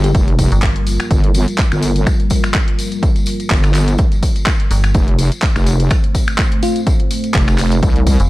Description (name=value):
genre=bass house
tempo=125 BPM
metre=4/4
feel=swing 55% on 16ths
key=G minor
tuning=A4 = 440 Hz
part: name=bell-like FM electric piano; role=melody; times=0.0-0.1, 6.6-6.8 s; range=F4 to G4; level=-22 LUFS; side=left 6 dB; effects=chorus, phaser, tape echo
part: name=dark analog pad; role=sustained chords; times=0.0-8.3 s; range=G3 to C5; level=-24 LUFS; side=equal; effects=chorus, sidechain pumping
part: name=wobble bass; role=bass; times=0.0-8.2 s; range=F1 to C2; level=-14 LUFS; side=equal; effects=chorus, sidechain pumping
part: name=garage drum kit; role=drums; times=0.0-8.3 s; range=finger snaps, handclaps, hi-hat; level=-22 LUFS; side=equal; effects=studio reverb
part: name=tambourine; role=percussion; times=0.0-8.3 s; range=none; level=-31 LUFS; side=left 4 dB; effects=none
part: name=electronic kick drum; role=drums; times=0.1-8.2 s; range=none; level=-15 LUFS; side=equal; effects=overdrive, studio reverb
part: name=metallic FM bass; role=bass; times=0.5-1.0, 4.7-4.9, 8.2-8.3 s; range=F1 to G1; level=-14 LUFS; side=equal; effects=tube saturation, sidechain pumping
room=digital ambience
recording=none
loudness=-12 LUFS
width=side -18 dB against mid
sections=0.0-8.3 A section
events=none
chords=0.0 Gm7; 4.9 F